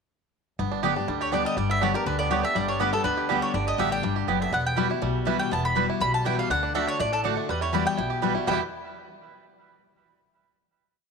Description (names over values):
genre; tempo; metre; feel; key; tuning
bluegrass; 243 BPM; 4/4; straight; unclear; A4 = 440 Hz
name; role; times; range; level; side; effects
picked steel-string acoustic guitar; accompaniment; 0.6-8.6 s; E2 to G4; -29 LUFS; left 11 dB; none
bluegrass banjo; arpeggios; 0.6-8.6 s; D3 to G4; -30 LUFS; right 12 dB; none
upright bass; bass; 0.6-8.6 s; E1 to E2; -32 LUFS; equal; none
mandolin; stabs; 0.8-8.6 s; G3 to G5; -31 LUFS; right 13 dB; none
mandolin; melody; 1.2-8.6 s; A4 to B5; -28 LUFS; left 1 dB; none
room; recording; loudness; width
light reverb, small room ambience; 1960s-style stereo with parts hard left and right; -23 LUFS; side -5 dB against mid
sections
0.6-8.5 A section; 8.5-9.5 final chord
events
none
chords
0.6 G; 4.5 Emadd9; 6.5 D; 7.5 Emadd9; 8.5 Em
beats
| 0.59 0.83 1.08 1.32 | 1.57 1.82 2.06 2.31 | 2.56 2.80 3.05 3.29 | 3.54 3.79 4.04 4.28 | 4.53 4.78 5.02 5.27 | 5.51 5.76 6.01 6.25 | 6.50 6.75 7.00 7.24 | 7.49 7.74 7.98 8.23 | 8.48